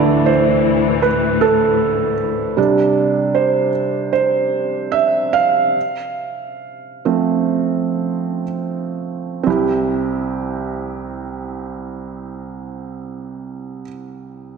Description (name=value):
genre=pop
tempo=58-79 BPM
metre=4/4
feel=straight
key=C major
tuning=A4 = 440 Hz
part: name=felt-muted upright piano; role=accompaniment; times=0.0-14.6 s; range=C2 to F5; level=-17 LUFS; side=right 5 dB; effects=none
part: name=warm studio string section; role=sustained chords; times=0.0-2.5 s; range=D2 to E3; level=-19 LUFS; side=left 9 dB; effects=none
room=wet echo chamber reverb, RT60 2.4 s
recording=1960s-style stereo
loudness=-15 LUFS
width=side -5 dB against mid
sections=0.0-9.5 A section; 9.5-13.5 B section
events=felt piano solo 0.0-9.5; slowing down 2.6-9.5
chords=0.0 Dsus2; 2.6 Csus2; 5.8 F; 9.5 C